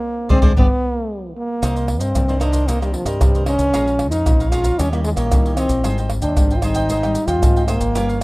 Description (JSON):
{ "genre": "samba and choro", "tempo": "114 BPM", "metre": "4/4", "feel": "straight", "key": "C minor", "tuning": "A4 = 445 Hz", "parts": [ { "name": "breathy trombone", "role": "melody", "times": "0.0-8.2 s", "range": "F3 to F4", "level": "-20 LUFS", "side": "equal", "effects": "none" }, { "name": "cavaquinho", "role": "accompaniment", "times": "0.3-8.2 s", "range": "Eb4 to Bb5", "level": "-30 LUFS", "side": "right 2 dB", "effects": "none" }, { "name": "nylon-string guitar", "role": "accompaniment", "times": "0.3-8.2 s", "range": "F2 to Fb4", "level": "-27 LUFS", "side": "left 2 dB", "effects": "none" }, { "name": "fingered electric bass with an envelope filter", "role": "bass", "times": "0.3-8.2 s", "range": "G1 to Eb3", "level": "-21 LUFS", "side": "equal", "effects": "none" }, { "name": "surdo, maracas, pandeiro and tamborim", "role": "percussion", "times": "0.3-8.2 s", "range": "none", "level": "-18 LUFS", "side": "equal", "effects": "none" } ], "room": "little or no reverb", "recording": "rough home demo mix", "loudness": "-15 LUFS", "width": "side -22 dB against mid", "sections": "0.0-1.6 A section; 1.6-8.2 B section", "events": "band accent 0.0-1.6; drum fill 1.2-1.6", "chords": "0.0 Bb9; 0.6 G; 1.6 Cm9; 3.7 Bbm7; 4.8 Eb7b9; 5.8 Abmaj7" }